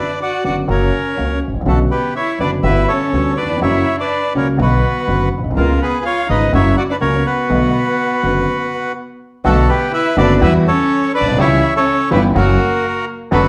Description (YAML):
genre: tango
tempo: 124 BPM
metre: 4/4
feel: rubato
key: B minor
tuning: A4 = 440 Hz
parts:
  - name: bandoneon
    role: melody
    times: 0.0-13.5 s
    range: E#4 to F#5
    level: -20 LUFS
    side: equal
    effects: none
  - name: dark violin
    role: second line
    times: 0.0-13.5 s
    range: A3 to F#4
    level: -24 LUFS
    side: equal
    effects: none
  - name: warm baby grand piano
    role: accompaniment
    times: 0.4-13.5 s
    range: F#1 to G4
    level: -20 LUFS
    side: equal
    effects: none
  - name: upright bass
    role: bass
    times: 0.4-13.5 s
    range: F#1 to E2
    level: -21 LUFS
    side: equal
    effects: none
  - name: rich studio string section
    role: stabs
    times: 9.5-13.5 s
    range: G3 to A4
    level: -27 LUFS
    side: equal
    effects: none
room: wet large studio reverb, RT60 0.9 s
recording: heard from further back in the room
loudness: -16 LUFS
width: mono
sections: 0.0-9.4 A section; 9.4-13.5 A section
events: stop 8.5-9.4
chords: 0.0 Bm; 0.7 F#; 1.7 Bmadd9; 2.6 Gmaj7; 3.6 F#; 4.6 Bm; 5.6 C#7; 6.5 F#; 7.5 Bm7; 10.4 Emadd9; 11.4 C#dim; 12.4 F#